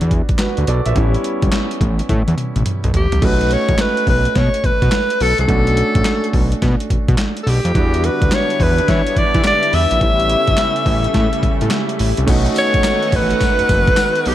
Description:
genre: R&B, new jack swing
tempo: 106 BPM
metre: 4/4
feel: swing 64% on 16ths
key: unclear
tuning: A4 = 440 Hz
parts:
  - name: clear concert grand piano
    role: accompaniment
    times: 0.0-14.3 s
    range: G3 to E5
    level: -23 LUFS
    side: right 2 dB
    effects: none
  - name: fat analog bass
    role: bass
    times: 0.0-14.3 s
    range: F#1 to E3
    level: -17 LUFS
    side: equal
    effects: none
  - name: boom bap sampler-style drum kit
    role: drums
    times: 0.0-14.3 s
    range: crash cymbal, handclaps, hi-hat, kick drum, snare drum, tambourine, toms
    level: -18 LUFS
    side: equal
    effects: overdrive
  - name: bright alto saxophone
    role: melody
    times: 3.0-14.3 s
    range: G4 to E5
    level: -17 LUFS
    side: left 1 dB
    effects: none
  - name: lush unison pad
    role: sustained chords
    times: 7.7-14.3 s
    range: C#3 to F#4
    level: -23 LUFS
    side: equal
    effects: chorus
room: light reverb, digital ambience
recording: dark, warm production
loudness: -13 LUFS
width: side -12 dB against mid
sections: 0.0-3.2 A section; 3.2-12.3 B section; 12.3-14.3 C section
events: drum fill 2.1-3.2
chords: 0.0 Em7; 1.0 A7; 3.2 B7; 5.5 Bm9; 7.8 Em7; 10.0 A7; 12.3 B7

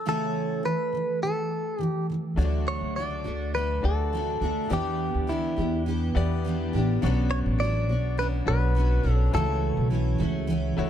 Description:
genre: acoustic pop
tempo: 104 BPM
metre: 4/4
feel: straight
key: D major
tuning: A4 = 437 Hz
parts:
  - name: direct-recorded clean electric guitar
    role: melody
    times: 0.0-9.9 s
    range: E4 to D5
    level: -29 LUFS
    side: equal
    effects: phaser
  - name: picked steel-string acoustic guitar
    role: accompaniment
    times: 0.0-10.9 s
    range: B2 to G4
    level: -29 LUFS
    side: right 1 dB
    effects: double-tracked left and right
  - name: bright upright piano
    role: accompaniment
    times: 2.4-10.9 s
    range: A3 to C#6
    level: -36 LUFS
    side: left 7 dB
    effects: none
  - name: upright bass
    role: bass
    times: 2.4-10.9 s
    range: A1 to E2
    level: -26 LUFS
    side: equal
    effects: none
room: light reverb, small room ambience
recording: dark, warm production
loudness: -24 LUFS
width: side -10 dB against mid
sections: 0.0-2.4 A section; 2.4-10.9 B section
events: none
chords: 0.1 F#m7/C#; 2.4 D; 4.7 Em7; 7.0 Bmadd9; 9.3 F#m7

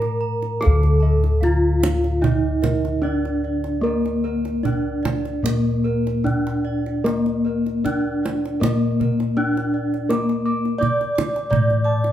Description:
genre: Javanese gamelan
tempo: 76 BPM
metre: 4/4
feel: uneven beats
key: D pelog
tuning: A4 = 439 Hz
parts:
  - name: gamelan-type bronze metallophone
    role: melody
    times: 0.0-12.1 s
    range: Bb3 to D5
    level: -21 LUFS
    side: left 1 dB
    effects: none
  - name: gamelan-type bossed gongs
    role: arpeggios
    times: 0.0-12.1 s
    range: Bb4 to D6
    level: -34 LUFS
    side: left 1 dB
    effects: none
  - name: gamelan-type bronze metallophone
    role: arpeggios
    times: 0.0-12.1 s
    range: Bb4 to D6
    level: -32 LUFS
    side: right 5 dB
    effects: none
  - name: gamelan-type bossed gongs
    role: bass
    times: 0.0-12.1 s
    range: D2 to Bb4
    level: -22 LUFS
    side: left 1 dB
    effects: none
  - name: kendang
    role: percussion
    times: 0.0-12.1 s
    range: none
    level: -26 LUFS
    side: right 3 dB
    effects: none
room: light reverb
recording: band playing live in one room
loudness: -18 LUFS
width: side -11 dB against mid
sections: 0.0-12.1 A section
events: none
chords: none

